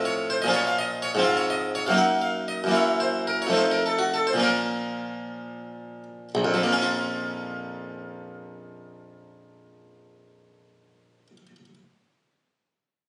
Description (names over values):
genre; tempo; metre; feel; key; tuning
classical, baroque-style suite movement for harpsichord; 57-85 BPM (dotted quarters); 6/8; rubato; Bb minor; A4 = 445 Hz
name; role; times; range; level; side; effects
harpsichord; solo; 0.0-11.7 s; Bb1 to Gb5; -26 LUFS; equal; none
room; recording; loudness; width
moderate studio ambience, RT60 0.5 s; recorded on a phone in the room, club reverb, compression; -25 LUFS; mono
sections
0.0-6.3 A section; 6.3-10.3 B section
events
slowing down 1.9-6.3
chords
0.0 F/A; 0.5 Bbm; 1.2 Fm/Ab; 1.9 Ebm/Gb; 2.7 Gb7; 3.5 F7; 4.4 Bbm